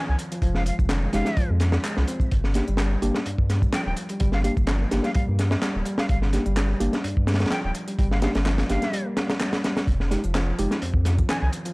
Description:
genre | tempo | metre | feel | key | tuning
breakbeat, breaks | 127 BPM | 4/4 | swing 54% on 16ths | unclear | A4 = 440 Hz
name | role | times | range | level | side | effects
breathy bright jazz flute | melody | 0.0-11.5 s | F5 to Ab5 | -34 LUFS | equal | small speaker sound, tape echo
reed electric piano | riff | 0.0-11.7 s | Eb3 to D4 | -31 LUFS | equal | overdrive
saturated sub bass | bass | 0.1-11.5 s | D1 to G2 | -23 LUFS | equal | none
crunchy breakbeat drum kit | drums | 0.2-11.7 s | hi-hat, kick drum, snare drum | -25 LUFS | equal | none
garage drum kit | drums | 0.2-11.7 s | handclaps, hi-hat | -35 LUFS | equal | none
mellow tine electric piano | stabs | 1.1-10.7 s | Ab3 to G4 | -29 LUFS | equal | slow stereo tremolo, tape echo
room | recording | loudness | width
small room ambience | dry, gritty hardware recording | -21 LUFS | side -26 dB against mid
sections
0.0-11.7 A section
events
break 8.9-9.9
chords
0.0 Fm7; 2.3 Gm; 9.9 Fm7

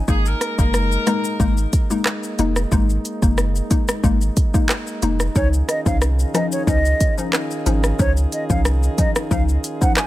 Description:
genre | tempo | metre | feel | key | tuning
dancehall | 91 BPM | 4/4 | straight | Db major | A4 = 440 Hz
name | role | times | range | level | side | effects
dark brass ensemble | sustained chords | 0.0-10.1 s | Eb3 to Ab4 | -30 LUFS | right 1 dB | sidechain pumping
warm horn section | second line | 0.1-1.9 s | Ab4 to Bb4 | -26 LUFS | left 1 dB | ping-pong delay
hollow square pluck | accompaniment | 0.1-10.0 s | F3 to Eb4 | -24 LUFS | left 5 dB | chorus, sidechain pumping
punchy sub bass | bass | 0.1-9.6 s | F1 to Db2 | -19 LUFS | equal | none
afro-pop drum kit | drums | 0.1-10.1 s | handclaps, hi-hat, kick drum, rim click, shaker | -19 LUFS | equal | none
hollow concert flute | melody | 5.4-10.1 s | Db5 to Ab5 | -25 LUFS | right 2 dB | ping-pong delay
room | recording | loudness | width
small room ambience | none | -16 LUFS | side -15 dB against mid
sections
0.0-10.1 A section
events
none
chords
0.1 Absus2; 5.4 Dbadd9

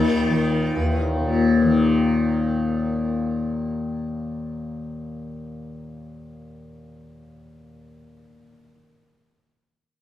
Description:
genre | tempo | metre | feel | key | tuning
indian classical | 172 BPM | 7/4 | straight | unclear | A4 = 440 Hz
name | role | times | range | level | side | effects
sitar | melody | 0.0-3.3 s | Eb3 | -29 LUFS | left 1 dB | none
tanpura | drone | 0.0-8.8 s | Eb2 to Eb3 | -21 LUFS | left 2 dB | none
room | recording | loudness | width
wet studio reverb, RT60 0.8 s | band playing live in one room | -20 LUFS | side -12 dB against mid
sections
0.0-1.9 A section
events
none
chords
none

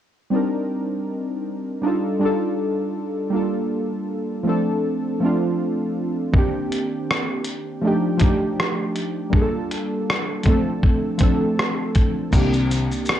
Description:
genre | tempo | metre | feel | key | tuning
lo-fi hip hop | 80 BPM | 4/4 | swing 57% on 16ths | C dorian | A4 = 440 Hz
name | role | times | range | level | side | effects
warm analog keys | accompaniment | 0.3-13.2 s | Eb3 to Bb4 | -21 LUFS | equal | chorus, low-pass filter
dusty soul sampler-style drum kit | drums | 6.3-13.2 s | crash cymbal, hi-hat, kick drum, rim click, shaker | -20 LUFS | equal | none
dark concert grand piano | bass | 12.3-12.8 s | C2 | -22 LUFS | left 1 dB | none
room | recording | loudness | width
moderate studio reverb, RT60 0.6 s | cassette tape | -19 LUFS | side -11 dB against mid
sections
0.3-12.3 A section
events
none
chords
0.3 Cm9; 1.8 F13; 3.3 Gm9; 4.5 Dm7; 6.3 Cm9; 7.8 F13; 9.3 Gm9; 10.5 Dm7; 12.3 Cm9

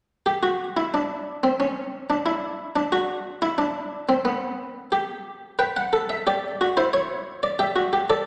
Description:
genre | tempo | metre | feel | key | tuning
classical, baroque-style 3-part fugue for harpsichord | 90 BPM | 4/4 | straight | G major | A4 = 440 Hz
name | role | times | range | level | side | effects
buff-stop harpsichord | solo | 0.3-8.3 s | B3 to G5 | -25 LUFS | equal | none
room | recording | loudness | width
wet recital hall reverb, RT60 1.8 s | none | -25 LUFS | mono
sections
0.3-5.6 A section; 5.6-8.3 B section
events
none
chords
0.3 N.C.; 5.6 G; 6.9 A7/E (rootless)

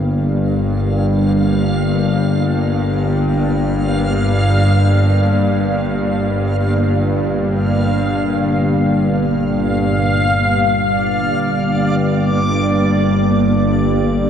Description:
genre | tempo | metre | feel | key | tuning
ambient | free time | none | none | G minor | A4 = 441 Hz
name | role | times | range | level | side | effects
deep dark ambient pad | sustained chords | 0.0-14.3 s | Bb3 to D5 | -22 LUFS | equal | chorus, built-in reverb
bowed-like drone | drone | 0.0-14.3 s | G1 to G2 | -15 LUFS | equal | built-in reverb
backwards swelling texture | texture | 0.0-14.3 s | D5 to F5 | -22 LUFS | equal | built-in reverb
room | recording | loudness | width
wet cathedral reverb, RT60 4.8 s | dark, warm production, nothing above 10.8 kHz | -14 LUFS | side -8 dB against mid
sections
0.0-9.9 A section; 9.9-14.3 B section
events
fade-in on ambient pad 0.0-9.9; fade-in on synth texture 0.0-9.9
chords
0.0 Gm

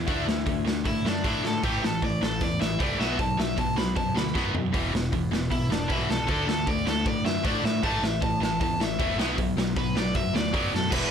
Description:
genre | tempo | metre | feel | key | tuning
punk rock | 155 BPM | 4/4 | straight | unclear | A4 = 441 Hz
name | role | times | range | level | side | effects
overdriven semi-hollow guitar | melody | 0.0-11.1 s | D4 to B5 | -30 LUFS | left 1 dB | none
distorted electric guitar | riff | 0.0-11.1 s | E2 to D4 | -30 LUFS | left 12 dB | overdrive
tight distorted guitar | riff | 0.0-11.1 s | E2 to D4 | -32 LUFS | right 14 dB | distortion
fuzz picked electric bass | bass | 0.0-11.1 s | E1 to A2 | -32 LUFS | equal | overdrive
raw garage drum kit | drums | 0.1-11.0 s | crash cymbal, hi-hat, kick drum, snare drum, toms | -29 LUFS | right 1 dB | none
room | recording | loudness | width
light reverb | none | -23 LUFS | side -8 dB against mid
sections
0.0-10.9 A section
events
overdriven electric guitar solo 0.0-10.9; drum fill 4.4-4.7, 10.7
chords
0.1 D; 1.6 Am; 3.0 B5; 4.7 E5; 6.3 D; 7.8 A5; 9.2 Bm

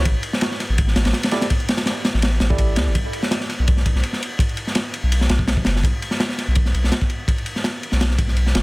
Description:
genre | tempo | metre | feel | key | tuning
drum and bass, jungle | 166 BPM | 4/4 | swing 53% on 16ths | B minor | A4 = 440 Hz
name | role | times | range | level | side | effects
saturated sub bass | bass | 0.0-8.6 s | F#1 to D2 | -19 LUFS | equal | none
crunchy breakbeat drum kit | drums | 0.1-8.6 s | kick drum, ride cymbal, snare drum | -20 LUFS | equal | none
tine electric piano | stabs | 1.3-2.9 s | E4 to D5 | -30 LUFS | right 3 dB | dub echo
room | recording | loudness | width
studio ambience | none | -18 LUFS | side -23 dB against mid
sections
0.0-2.9 A section; 2.9-8.6 A section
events
drop 0.0-2.9, 2.9-8.6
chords
0.1 A7sus4; 2.9 B5

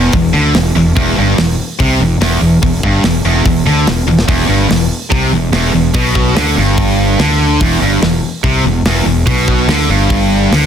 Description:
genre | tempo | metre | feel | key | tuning
heavy metal | 144 BPM | 4/4 | straight | E minor | A4 = 440 Hz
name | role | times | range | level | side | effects
heavy high-gain guitar | riff | 0.0-10.7 s | E2 to D3 | -16 LUFS | left 11 dB | distortion
high-gain distorted guitar | riff | 0.0-10.7 s | E2 to D3 | -15 LUFS | right 10 dB | distortion
fuzz fingered electric bass | bass | 0.0-10.7 s | E1 to D2 | -15 LUFS | left 1 dB | overdrive
tight metal drum kit | drums | 0.1-10.6 s | hi-hat, kick drum, snare drum, toms | -17 LUFS | equal | soft clipping on kick
room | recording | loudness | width
studio reverb | dense, heavily limited modern master | -10 LUFS | side -8 dB against mid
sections
0.0-10.7 A section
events
drum fill 4.1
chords
0.0 Em

